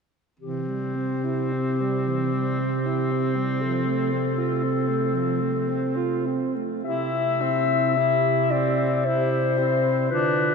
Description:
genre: classical, lyrical piece for single-reed quartet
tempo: 56 BPM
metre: 3/4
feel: uneven beats, rubato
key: C major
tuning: A4 = 440 Hz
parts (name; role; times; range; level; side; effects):
- warm clarinet; melody; 0.4-10.5 s; G4 to E5; -26 LUFS; left 6 dB; none
- warm alto saxophone; second line; 0.4-10.5 s; E3 to G4; -29 LUFS; right 6 dB; none
- clear tenor saxophone; accompaniment; 0.4-10.5 s; C4 to E4; -27 LUFS; left 3 dB; none
- dark bass clarinet; bass; 0.4-10.5 s; C3 to D3; -28 LUFS; right 4 dB; none
room: wet cathedral reverb, RT60 7.2 s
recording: none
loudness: -21 LUFS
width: side -5 dB against mid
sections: 0.4-6.8 A section; 6.8-10.5 B section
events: none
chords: 0.4 C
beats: | 0.40 1.51 2.60 | 3.61 4.62 5.69 | 6.85 7.97 9.06 | 10.12

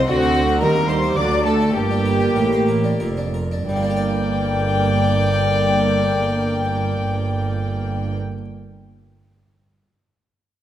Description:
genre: classical, baroque-style concerto movement with solo episodes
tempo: 87-114 BPM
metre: 3/4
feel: straight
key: G minor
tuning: A4 = 440 Hz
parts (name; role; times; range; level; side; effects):
- rich chamber violin section; melody; 0.0-8.2 s; F#5 to D6; -30 LUFS; left 5 dB; none
- harpsichord; accompaniment; 0.0-8.4 s; F2 to D5; -29 LUFS; equal; none
- warm chamber viola section; accompaniment; 0.0-8.2 s; F#3 to C4; -24 LUFS; right 1 dB; none
- warm chamber cello section; bass; 0.0-8.2 s; F2 to Eb3; -25 LUFS; right 4 dB; none
- warm chamber double bass section; bass; 0.0-8.1 s; F1 to Eb2; -23 LUFS; right 3 dB; none
- rich violin; melody; 0.1-8.2 s; F#4 to D5; -23 LUFS; left 3 dB; none
- warm chamber violin section; second line; 0.1-8.2 s; F#4 to G5; -26 LUFS; left 4 dB; none
room: wet recital hall reverb, RT60 1.5 s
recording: none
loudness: -17 LUFS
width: side -11 dB against mid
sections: 0.0-3.7 A section; 3.7-7.8 B section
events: slowing down 0.0-3.7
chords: 0.1 D7; 0.6 Eb; 1.2 D; 1.8 Gm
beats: | 0.09 0.62 1.17 | 1.75 2.36 3.00 | 3.68 4.37 5.05 | 5.74 6.42 7.11

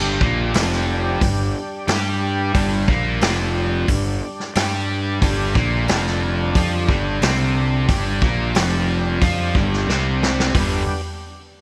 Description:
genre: blues rock power trio and southern rock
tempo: 90 BPM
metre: 4/4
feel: straight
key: unclear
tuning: A4 = 440 Hz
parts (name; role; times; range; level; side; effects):
- overdriven tonewheel organ; sustained chords; 0.0-11.0 s; D3 to G4; -32 LUFS; equal; chorus vibrato, slow rotary speaker
- overdriven electric guitar; riff; 0.0-10.8 s; F2 to G4; -25 LUFS; equal; none
- fuzz fingered electric bass; bass; 0.0-10.9 s; F1 to G2; -25 LUFS; equal; overdrive
- vintage drum kit; drums; 0.2-10.7 s; hi-hat, kick drum, snare drum, toms; -24 LUFS; equal; none
room: light reverb, studio ambience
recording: none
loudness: -20 LUFS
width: mono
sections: 0.0-10.6 A section; 10.6-11.6 B section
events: drum fill 9.9-10.6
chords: 0.0 G5; 10.6 G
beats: 0.55 1.22 1.89 | 2.56 3.23 3.89 4.56 | 5.23 5.89 6.56 7.22 | 7.89 8.56 9.22 9.89 | 10.55

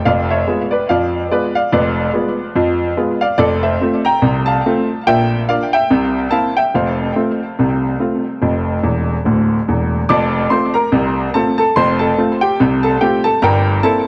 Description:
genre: ragtime piano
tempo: 72 BPM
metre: 2/4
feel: swing 58% on 16ths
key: F major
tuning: A4 = 441 Hz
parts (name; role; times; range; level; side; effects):
- clear grand piano; solo; 0.0-14.1 s; D1 to D6; -16 LUFS; equal; tape echo
room: moderate small room reverb, RT60 0.6 s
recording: worn, warbling old tape, cassette tape, warbly pitch drift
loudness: -16 LUFS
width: mono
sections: 0.0-10.1 A section; 10.1-14.1 B section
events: grand piano fill 8.8-10.1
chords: 0.1 Fdim7; 3.4 F; 5.1 Bb; 5.9 C7; 6.7 F; 13.4 C7/G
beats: | 0.07 0.90 | 1.73 2.56 | 3.39 4.22 | 5.06 5.89 | 6.73 7.57 | 8.41 9.25 | 10.08 10.92 | 11.75 12.58 | 13.41

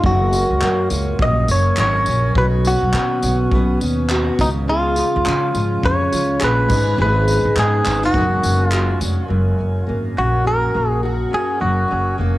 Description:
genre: acoustic pop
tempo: 104 BPM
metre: 4/4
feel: swing 60% on 16ths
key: F# major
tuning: A4 = 442 Hz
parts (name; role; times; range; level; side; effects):
- direct-recorded clean electric guitar; melody; 0.0-12.2 s; D#4 to D#5; -19 LUFS; equal; cassette tape, tape echo
- fingerpicked steel-string acoustic guitar; accompaniment; 0.0-12.4 s; F#2 to A#4; -22 LUFS; equal; double-tracked left and right, cassette tape
- ethereal airy pad; sustained chords; 0.2-9.3 s; D#3 to C#4; -31 LUFS; right 1 dB; none
- upright bass; bass; 0.0-12.4 s; E#1 to C#3; -19 LUFS; equal; none
- natural country drum kit; drums; 0.0-9.2 s; crash cymbal, handclaps, kick drum, tambourine; -24 LUFS; equal; cassette tape
room: light reverb, studio ambience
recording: home recording on cassette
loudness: -15 LUFS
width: side -16 dB against mid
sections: 0.0-9.3 A section; 9.3-12.4 B section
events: none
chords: 0.0 F#; 2.4 Badd9; 4.4 C#; 6.7 G#m; 8.1 F#add9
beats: | 0.04 0.62 1.20 1.78 | 2.36 2.94 3.52 4.09 | 4.67 5.25 5.83 6.41 | 6.99 7.57 8.14 8.72 | 9.30 9.88 10.46 11.03 | 11.61 12.19

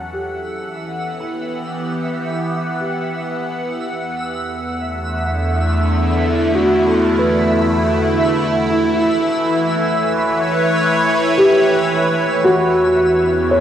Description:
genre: ambient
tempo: 56 BPM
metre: 4/4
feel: straight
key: unclear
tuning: A4 = 439 Hz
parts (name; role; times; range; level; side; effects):
- evolving wavetable pad; sustained chords; 0.0-13.6 s; E2 to F#5; -17 LUFS; equal; phaser, built-in reverb, cassette tape
- felt-muted upright piano; arpeggios; 0.0-13.6 s; E4 to C#5; -18 LUFS; equal; cassette tape, analog delay
- twinkling granular texture; texture; 0.4-13.6 s; E5; -26 LUFS; right 2 dB; built-in reverb, cassette tape
room: wet spring reverb, RT60 1.5 s, studio ambience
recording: home recording on cassette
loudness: -15 LUFS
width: side -10 dB against mid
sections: 0.0-13.6 A section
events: fade-in on ambient pad 0.0-13.6; fade-in on felt piano 0.0-13.6; fade-in on synth texture 0.0-13.6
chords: 0.0 Em; 3.9 D6/E; 8.2 A7/E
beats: 0.67 1.74 2.81 | 3.88 4.95 6.03 7.10 | 8.17 9.24 10.31 11.38 | 12.45 13.53

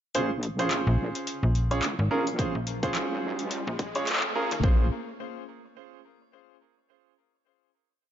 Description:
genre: glitch hop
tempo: 107 BPM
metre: 4/4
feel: swing 58% on 16ths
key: Bb minor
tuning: A4 = 440 Hz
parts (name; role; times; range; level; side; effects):
- clear baby grand piano; stabs; 0.1-4.9 s; Db4 to Db5; -30 LUFS; right 2 dB; sidechain pumping, ping-pong delay
- wobble bass; bass; 0.1-4.9 s; Ab1 to F2; -32 LUFS; equal; chorus, overdrive, high-pass filter
- dubstep drum kit; drums; 0.1-4.6 s; handclaps, hi-hat; -32 LUFS; left 1 dB; none
- riser; sound effects; 1.6-4.6 s; none; -38 LUFS; equal; none
- slap-like FM bass; bass; 0.9-4.6 s; Ab1 to Eb2; -26 LUFS; equal; none
- electronic kick drum; drums; 2.4-4.8 s; none; -26 LUFS; equal; none
room: light reverb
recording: high-pass filter, nothing above 7.5 kHz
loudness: -25 LUFS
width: side -10 dB against mid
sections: 0.1-4.6 build; 4.6-6.9 final chord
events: build-up 0.1-4.6; filter sweep 0.1-4.6; riser 1.6-4.6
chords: 0.1 Bbm9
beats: | 0.15 0.71 1.27 1.83 | 2.39 2.95 3.51 4.08 | 4.64

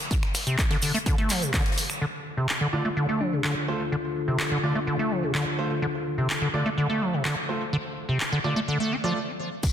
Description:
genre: acid house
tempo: 126 BPM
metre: 4/4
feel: straight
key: D minor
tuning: A4 = 439 Hz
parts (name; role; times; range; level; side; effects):
- open jazz drum kit; drums; 0.0-1.9, 9.6-9.7 s; hi-hat, snare drum; -37 LUFS; left 3 dB; sidechain pumping on hats, high-pass filter on hats, high-pass filter on snare, high-pass filter on room
- liquid acid bass; riff; 0.1-9.7 s; C3 to D4; -26 LUFS; equal; chorus, tube saturation, cassette tape, digital delay
- electronic kick drum; drums; 0.1-1.6, 9.6-9.7 s; none; -25 LUFS; equal; none
- punchy analog drum machine; drums; 0.1-9.7 s; crash cymbal, finger snaps, handclaps, hi-hat; -31 LUFS; equal; none
- tube shaker; percussion; 0.1-2.0, 9.6-9.7 s; none; -34 LUFS; right 4 dB; none
- dark analog pad; sustained chords; 2.0-9.7 s; D3 to A4; -33 LUFS; left 3 dB; lush chorus, sidechain pumping
- bell-like FM electric piano; melody; 2.7-3.9 s; D4 to F4; -34 LUFS; left 1 dB; chorus, digital delay
- clear baby grand piano; stabs; 2.7-9.2 s; A3 to D5; -34 LUFS; right 2 dB; low-pass filter, digital delay
room: wet lush hall reverb, RT60 2.0 s, small room ambience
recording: dense, heavily limited modern master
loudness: -24 LUFS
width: side -9 dB against mid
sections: 0.0-2.0 A section; 2.0-9.6 B section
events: stop 9.2-9.6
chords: 0.0 Dm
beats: | 0.11 0.58 1.06 1.54 | 2.01 2.49 2.97 3.44 | 3.92 4.39 4.87 5.35 | 5.82 6.30 6.78 7.25 | 7.73 8.21 8.68 9.16 | 9.63

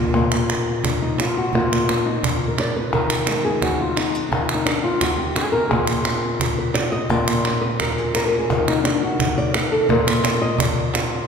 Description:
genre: flamenco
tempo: 172 BPM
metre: 4/4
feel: straight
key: Bb phrygian dominant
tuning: A4 = 440 Hz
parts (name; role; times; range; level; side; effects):
- flamenco guitar; melody; 0.0-11.3 s; Bb2 to Eb5; -20 LUFS; left 2 dB; none
- cajon; percussion; 0.1-11.1 s; none; -24 LUFS; right 2 dB; none
- palmas hand claps; percussion; 0.1-11.1 s; none; -24 LUFS; right 2 dB; none
room: wet concert hall reverb, RT60 2.1 s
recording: recorded in a church or concert hall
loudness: -18 LUFS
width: side -6 dB against mid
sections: 0.1-11.3 A section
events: nylon-string guitar solo 0.1-11.3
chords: 0.1 Bb5; 2.9 Eb5; 5.7 N.C.; 9.9 Bb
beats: | 0.15 0.50 0.84 1.19 | 1.54 1.89 2.23 2.58 | 2.93 3.28 3.62 3.97 | 4.32 4.67 5.01 5.36 | 5.71 6.06 6.41 6.76 | 7.10 7.45 7.80 8.15 | 8.50 8.85 9.20 9.54 | 9.89 10.24 10.59 10.94

